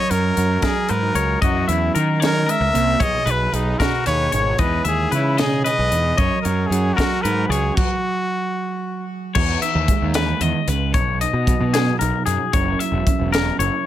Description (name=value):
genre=math rock and midwest emo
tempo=76 BPM (dotted quarters)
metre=6/8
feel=straight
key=B major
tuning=A4 = 440 Hz
part: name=bright trumpet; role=melody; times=0.0-9.1 s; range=D#4 to E5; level=-22 LUFS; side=left 1 dB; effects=digital delay
part: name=mellow electric guitar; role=accompaniment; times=0.0-13.9 s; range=B2 to A#4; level=-26 LUFS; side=right 7 dB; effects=none
part: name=twangy electric guitar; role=arpeggios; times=0.0-13.9 s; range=G#4 to E5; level=-24 LUFS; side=left 8 dB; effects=none
part: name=fuzz picked electric bass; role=bass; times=0.1-13.7 s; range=E1 to D#3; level=-22 LUFS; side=equal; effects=overdrive
part: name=crisp fusion drum kit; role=drums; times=0.1-13.7 s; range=crash cymbal, hi-hat, kick drum, snare drum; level=-22 LUFS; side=equal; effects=none
room=light reverb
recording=none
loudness=-17 LUFS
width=side -12 dB against mid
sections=0.0-9.4 A section; 9.4-13.9 B section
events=stop 7.8-9.4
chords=0.0 D#m7/F#; 1.4 F#7; 3.0 B6; 4.6 Emaj7; 6.2 D#m7/F#; 7.8 N.C.; 9.4 Emaj7; 10.9 Bmaj7; 12.5 F#7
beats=0.63 | 1.42 2.21 | 3.00 3.80 | 4.59 5.39 | 6.18 6.97 | 7.77 8.56 | 9.35 10.15 | 10.94 11.73 | 12.53 13.32